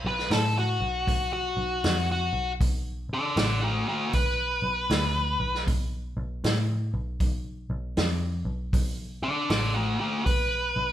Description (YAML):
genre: blues rock power trio and southern rock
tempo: 78 BPM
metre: 4/4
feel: swing 64% on 8ths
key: unclear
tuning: A4 = 437 Hz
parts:
  - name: vintage muted picked electric bass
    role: bass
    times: 0.0-10.9 s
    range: A1 to A2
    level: -30 LUFS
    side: equal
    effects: none
  - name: octave-fuzz lead guitar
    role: melody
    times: 0.1-10.9 s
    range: F#4 to F#5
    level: -27 LUFS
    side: left 1 dB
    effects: distortion
  - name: vintage drum kit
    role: drums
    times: 0.2-10.5 s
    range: hi-hat, kick drum, snare drum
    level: -27 LUFS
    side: equal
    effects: none
room: moderate large studio reverb, RT60 0.9 s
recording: band playing live in one room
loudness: -24 LUFS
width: side -12 dB against mid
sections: 0.0-10.9 A section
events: none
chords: 0.0 B5